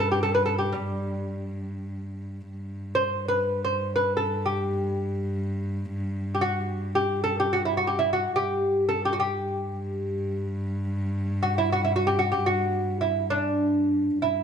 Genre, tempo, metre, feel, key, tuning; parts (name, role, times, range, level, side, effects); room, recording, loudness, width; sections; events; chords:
Persian modal ensemble; free time; G dastgah mahur; A4 = 440 Hz
lute; melody; 0.0-14.4 s; G3 to C5; -24 LUFS; equal
rich cello; drone; 0.0-14.4 s; G2; -30 LUFS; equal
moderate recital hall reverb, RT60 1.3 s; dark, warm production; -24 LUFS; side -7 dB against mid
0.0-2.5 A section; 2.5-14.4 A section